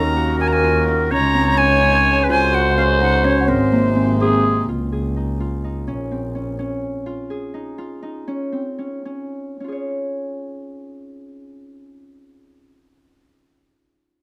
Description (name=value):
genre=contemporary instrumental, chamber music in an uneven meter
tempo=214-255 BPM (eighths)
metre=5/8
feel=straight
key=Db major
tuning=A4 = 440 Hz
part: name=silver concert flute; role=melody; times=0.0-4.4 s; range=C5 to Bb5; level=-23 LUFS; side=equal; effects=none
part: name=growling clarinet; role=second line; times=0.0-4.7 s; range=Ab4 to Db5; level=-21 LUFS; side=equal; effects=none
part: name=hand-pumped harmonium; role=sustained chords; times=0.0-4.7 s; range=C3 to Gb4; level=-28 LUFS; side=equal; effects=none
part: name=Celtic harp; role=arpeggios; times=0.0-12.8 s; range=Bb3 to Db5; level=-25 LUFS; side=equal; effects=none
part: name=rich double bass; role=bass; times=0.0-7.0 s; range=Ab1 to Eb2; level=-24 LUFS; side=equal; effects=none
part: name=worn celesta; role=texture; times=2.1-3.7 s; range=Gb5 to Ab5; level=-31 LUFS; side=equal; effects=none
room=moderate studio reverb, RT60 0.7 s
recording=none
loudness=-19 LUFS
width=mono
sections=0.0-4.7 A section; 4.7-9.6 B section; 9.6-12.4 C section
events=slowing down 7.1-9.6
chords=0.0 Ebm; 1.1 Dbsus2; 2.3 Gbsus2/Db; 3.5 Ab; 4.7 Db; 5.9 Bbm; 7.1 Ebsus24; 8.3 N.C.; 9.6 Db